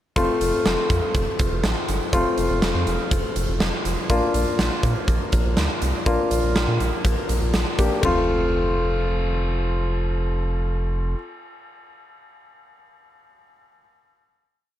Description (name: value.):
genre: synth-pop.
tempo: 122 BPM.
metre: 4/4.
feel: straight.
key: F major.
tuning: A4 = 439 Hz.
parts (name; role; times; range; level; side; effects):
clear grand piano; accompaniment; 0.2-11.2 s; A3 to G4; -24 LUFS; left 2 dB; none.
round analog bass; bass; 0.2-11.1 s; F1 to Bb2; -24 LUFS; equal; none.
huge arena drum kit; drums; 0.2-8.1 s; hi-hat, kick drum, ride cymbal, snare drum, toms; -24 LUFS; right 1 dB; none.
room: light reverb, studio reverb.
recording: none.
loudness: -20 LUFS.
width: side -12 dB against mid.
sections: 0.2-8.0 verse; 8.0-12.0 final chord.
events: none.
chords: 0.2 F; 4.1 Bb; 8.0 F.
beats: | 0.16 0.66 1.15 1.64 | 2.13 2.62 3.11 3.61 | 4.10 4.59 5.08 5.57 | 6.07 6.56 7.05 7.54 | 8.03 8.52 9.02 9.51 | 10.00 10.49 10.98.